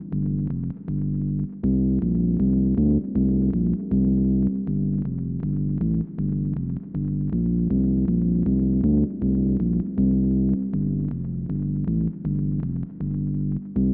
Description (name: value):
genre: reggae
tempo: 79 BPM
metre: 4/4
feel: swing 58% on 16ths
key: unclear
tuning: A4 = 440 Hz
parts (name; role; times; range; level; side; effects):
- warm sub bass; solo; 0.1-13.9 s; F1 to D2; -23 LUFS; equal; dub echo
room: moderate plate reverb, RT60 2.5 s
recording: AM radio sound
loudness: -20 LUFS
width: side -35 dB against mid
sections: 0.0-7.7 A section; 7.7-13.9 B section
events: none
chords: none